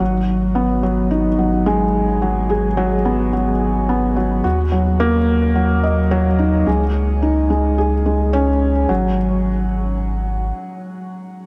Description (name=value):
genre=piano and strings electronica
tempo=108 BPM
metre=4/4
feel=straight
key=unclear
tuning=A4 = 441 Hz
part: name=felt-muted upright piano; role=riff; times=0.0-11.5 s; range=F#3 to D#5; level=-20 LUFS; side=equal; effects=delay, shimmer reverb
part: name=warm sub bass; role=bass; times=0.0-10.5 s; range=G#1 to D#2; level=-22 LUFS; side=equal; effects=tube saturation
room=moderate huge ambient reverb, RT60 7.6 s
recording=none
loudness=-18 LUFS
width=mono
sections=0.0-8.9 A section; 8.9-11.1 B section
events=drop 0.0-8.9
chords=0.0 G#m7; 4.4 D#m; 6.7 C#sus2; 8.9 F#sus2/G#